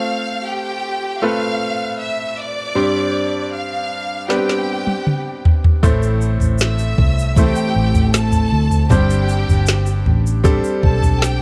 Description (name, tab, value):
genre	pop ballad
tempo	78 BPM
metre	4/4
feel	straight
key	unclear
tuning	A4 = 439 Hz
part	rich studio violin section	melody	0.0-11.4 s	G4 to F6	-26 LUFS	equal	none
part	bright grand piano	accompaniment	0.0-11.4 s	G2 to C5	-24 LUFS	equal	none
part	smooth R&B drum kit	drums	4.3-11.4 s	kick drum, snare drum, toms	-18 LUFS	equal	none
part	picked steel-string acoustic guitar	arpeggios	5.8-11.4 s	A2 to C5	-26 LUFS	equal	none
part	vintage muted fingered electric bass	bass	5.8-11.4 s	G1 to D2	-20 LUFS	equal	none
part	tube shaker	percussion	5.8-11.4 s	none	-37 LUFS	equal	none
room	studio reverb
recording	dark, warm production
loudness	-17 LUFS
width	mono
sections	0.0-11.4 A section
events	drum fill 4.3-5.8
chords	0.0 F; 2.8 Gsus4; 5.8 Am; 8.9 Gsus4